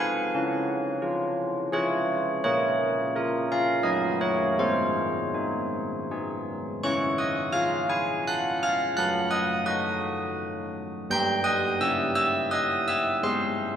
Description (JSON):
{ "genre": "classical, tune for church bells", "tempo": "85 BPM", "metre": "3/4", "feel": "straight", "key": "Db major", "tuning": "A4 = 440 Hz", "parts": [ { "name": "carillon bells", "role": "solo", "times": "0.0-13.8 s", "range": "Gb3 to G6", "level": "-24 LUFS", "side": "equal", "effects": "none" } ], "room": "wet church reverb, RT60 3.1 s", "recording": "none", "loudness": "-24 LUFS", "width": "side -9 dB against mid", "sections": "0.0-6.9 A section; 6.9-13.8 B section", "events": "none", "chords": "0.3 Db; 2.4 Bbm; 3.9 Ebm/Gb; 4.6 Ab; 6.9 Db; 9.0 Ebm/Gb; 11.1 Eb7b9/G; 13.2 Ab" }